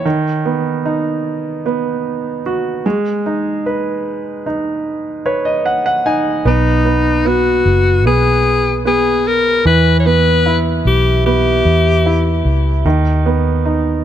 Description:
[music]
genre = pop ballad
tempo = 75 BPM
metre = 4/4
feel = straight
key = B major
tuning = A4 = 436 Hz
[part]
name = clear concert grand piano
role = accompaniment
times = 0.0-14.0 s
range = D#3 to G#5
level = -17 LUFS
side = right 4 dB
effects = none
[part]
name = clear alto saxophone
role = melody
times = 6.5-12.4 s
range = D#4 to C#5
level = -15 LUFS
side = left 4 dB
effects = none
[part]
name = vintage muted fingered electric bass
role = bass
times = 6.5-14.0 s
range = F#1 to E2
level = -15 LUFS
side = equal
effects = none
[sound]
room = light reverb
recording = none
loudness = -13 LUFS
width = side -10 dB against mid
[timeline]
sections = 0.0-14.0 A section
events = grand piano fill 4.9-6.5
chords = 0.1 B/D#; 2.9 G#m; 6.5 B6; 9.7 Em; 12.9 B

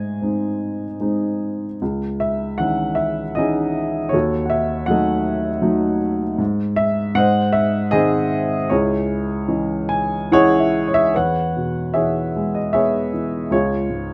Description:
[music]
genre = classical, lyrical solo piano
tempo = 71-80 BPM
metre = 3/4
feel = rubato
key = C# harmonic minor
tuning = A4 = 438 Hz
[part]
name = dark baby grand piano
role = solo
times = 0.0-14.1 s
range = C#2 to G#5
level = -20 LUFS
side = equal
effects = none
[sound]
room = light reverb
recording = close, detailed microphones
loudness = -20 LUFS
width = mono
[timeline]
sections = 0.0-11.1 A section; 11.1-14.1 B section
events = grand piano fill 9.5-11.1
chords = 0.0 G#; 1.8 C#madd9; 4.1 D#dim; 6.4 N.C.; 7.2 G#; 8.7 C#madd9; 11.1 E6; 13.5 C#

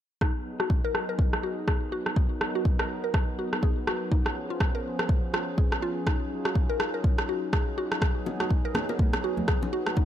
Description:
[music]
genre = afro house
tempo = 123 BPM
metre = 4/4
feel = swing 58% on 16ths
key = unclear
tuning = A4 = 440 Hz
[part]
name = warm analog pad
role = sustained chords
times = 0.2-10.1 s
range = F3 to Bb4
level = -35 LUFS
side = equal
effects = chorus, sidechain pumping
[part]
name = mallet-like synth pluck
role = arpeggios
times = 0.2-10.1 s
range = Eb4 to Bb4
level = -33 LUFS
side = left 1 dB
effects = chorus, phaser, sidechain pumping, ping-pong delay
[part]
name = electronic kick drum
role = drums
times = 0.2-10.1 s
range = none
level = -25 LUFS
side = equal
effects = none
[part]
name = electronic rim click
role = drums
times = 0.2-9.9 s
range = none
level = -31 LUFS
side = right 1 dB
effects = low-pass filter on snare, low-pass filter on room
[part]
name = bongos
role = percussion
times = 8.3-10.1 s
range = none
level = -36 LUFS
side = left 4 dB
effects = none
[part]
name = congas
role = percussion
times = 8.4-9.9 s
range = none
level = -34 LUFS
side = right 2 dB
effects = none
[sound]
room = little or no reverb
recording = none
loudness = -25 LUFS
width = side -11 dB against mid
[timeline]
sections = 0.2-10.1 A section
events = none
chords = 0.2 Abm7; 4.1 Db7; 6.1 Ebm11; 8.0 Abm7

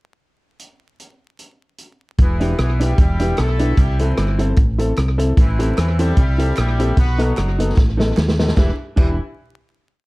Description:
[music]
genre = ska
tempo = 150 BPM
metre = 4/4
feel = swing 55% on 8ths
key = E minor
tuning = A4 = 441 Hz
[part]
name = vintage drum kit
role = drums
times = 0.6-9.1 s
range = crash cymbal, hi-hat, kick drum, rim click, snare drum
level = -17 LUFS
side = equal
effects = none
[part]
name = clear horn section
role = melody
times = 2.2-9.2 s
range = E3 to B4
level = -27 LUFS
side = equal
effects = slapback echo
[part]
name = fingered electric bass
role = bass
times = 2.2-9.2 s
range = E1 to E2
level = -18 LUFS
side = equal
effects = none
[part]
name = semi-hollow electric guitar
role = accompaniment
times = 2.4-9.1 s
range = D4 to C5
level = -26 LUFS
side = right 2 dB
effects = slapback echo
[part]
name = clear upright piano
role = stabs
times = 2.4-9.1 s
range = B3 to A4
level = -25 LUFS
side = left 2 dB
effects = none
[part]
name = group handclap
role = percussion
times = 5.8-9.2 s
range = none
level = -38 LUFS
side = right 6 dB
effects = none
[sound]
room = small room ambience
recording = dark, warm production, vinyl crackle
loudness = -15 LUFS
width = side -22 dB against mid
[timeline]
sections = 0.6-2.2 pickup bar; 2.2-8.6 head; 8.6-10.1 final chord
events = drum fill 7.8-8.6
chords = 0.6 N.C.; 2.2 Em7; 3.8 C6; 5.4 Am7; 7.0 B7; 8.6 Em7

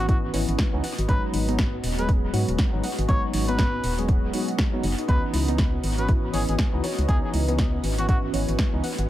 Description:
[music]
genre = deep house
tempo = 120 BPM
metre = 4/4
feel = swing 59% on 16ths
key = C# minor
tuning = A4 = 440 Hz
[part]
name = trumpet with cup mute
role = melody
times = 0.0-8.2 s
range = F#4 to C#5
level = -33 LUFS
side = equal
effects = analog delay
[part]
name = deep dark ambient pad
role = sustained chords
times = 0.0-9.1 s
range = E3 to D#5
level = -37 LUFS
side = left 3 dB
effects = chorus, built-in reverb, sidechain pumping
[part]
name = bright tine electric piano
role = stabs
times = 0.0-8.8 s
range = E3 to G#4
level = -30 LUFS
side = equal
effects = medium stereo tremolo, sidechain pumping, dub echo
[part]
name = organ-like FM bass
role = bass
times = 0.0-9.1 s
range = D#1 to G#2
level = -26 LUFS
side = equal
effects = sidechain pumping
[part]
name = ethereal airy pad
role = texture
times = 0.0-9.1 s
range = C#4 to D#5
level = -35 LUFS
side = equal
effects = ensemble chorus, built-in reverb, sidechain pumping
[part]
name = soft round pluck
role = arpeggios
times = 0.1-9.0 s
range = B3 to F#5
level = -34 LUFS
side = left 2 dB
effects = chorus, cassette tape, sidechain pumping, dub echo
[part]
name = deep house drum kit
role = drums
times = 0.1-9.1 s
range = hi-hat, snare drum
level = -31 LUFS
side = equal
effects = overdrive, dub echo
[part]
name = electronic kick drum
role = drums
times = 0.1-8.7 s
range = none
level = -23 LUFS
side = equal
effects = overdrive
[sound]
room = digital ambience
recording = echo-heavy mix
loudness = -21 LUFS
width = side -14 dB against mid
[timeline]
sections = 0.0-9.1 A section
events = none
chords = 0.0 C#m9; 0.8 G#m7; 5.1 C#m9

